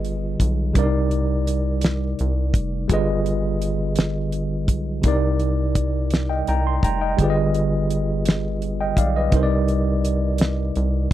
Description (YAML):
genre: slow six-eight R&B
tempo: 56 BPM (dotted quarters)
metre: 6/8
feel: straight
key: C minor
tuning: A4 = 440 Hz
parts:
  - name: mellow tine electric piano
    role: accompaniment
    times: 0.0-11.1 s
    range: C3 to C6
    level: -22 LUFS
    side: right 1 dB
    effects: medium stereo tremolo
  - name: rubbery square bass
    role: bass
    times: 0.0-11.1 s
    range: F1 to C2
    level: -23 LUFS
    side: equal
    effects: none
  - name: damped 70s drum kit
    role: drums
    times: 0.0-11.1 s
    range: hi-hat, kick drum, snare drum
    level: -20 LUFS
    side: equal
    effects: none
room: little or no reverb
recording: dry, close 1970s-style studio recording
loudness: -19 LUFS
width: side -13 dB against mid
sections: 0.0-11.1 A section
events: none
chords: 0.0 G7b9b13; 0.8 Cm9; 2.9 G7b9b13; 5.0 Cm9; 7.2 G7b9b13; 9.3 Cm9